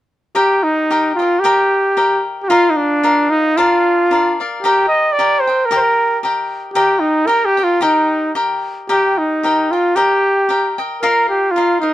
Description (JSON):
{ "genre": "mexican folk, mariachi", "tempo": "113 BPM", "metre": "2/4", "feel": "straight", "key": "Eb major", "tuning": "A4 = 440 Hz", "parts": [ { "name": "cavaquinho", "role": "accompaniment", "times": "0.3-11.9 s", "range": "D4 to G5", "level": "-17 LUFS", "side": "left 2 dB", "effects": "none" }, { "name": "clear trumpet", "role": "melody", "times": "0.4-11.9 s", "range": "D4 to Eb5", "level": "-14 LUFS", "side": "right 1 dB", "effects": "none" } ], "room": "light reverb", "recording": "dark, warm production", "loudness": "-13 LUFS", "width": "side -14 dB against mid", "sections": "0.3-8.9 A section; 8.9-11.9 A section", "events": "none", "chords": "0.3 Eb; 2.5 Bbsus4; 3.6 Bb; 4.6 Eb; 11.0 Bbsus4" }